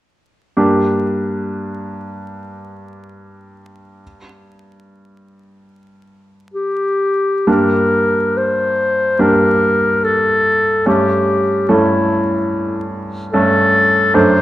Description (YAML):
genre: classical, romantic duo for clarinet and grand piano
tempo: 71 BPM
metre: 4/4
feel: uneven beats, rubato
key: G minor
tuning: A4 = 440 Hz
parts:
  - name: bright grand piano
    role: accompaniment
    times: 0.6-14.4 s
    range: F#2 to A4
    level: -16 LUFS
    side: right 1 dB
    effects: none
  - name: bright clarinet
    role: melody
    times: 6.5-14.4 s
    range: E4 to C5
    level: -14 LUFS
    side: left 1 dB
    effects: none
room: moderate recital hall reverb, RT60 1.5 s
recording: close, detailed microphones, vinyl crackle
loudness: -13 LUFS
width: side -14 dB against mid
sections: 0.6-7.5 A section; 7.5-14.4 B section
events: none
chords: 0.6 Gm; 10.9 A7/G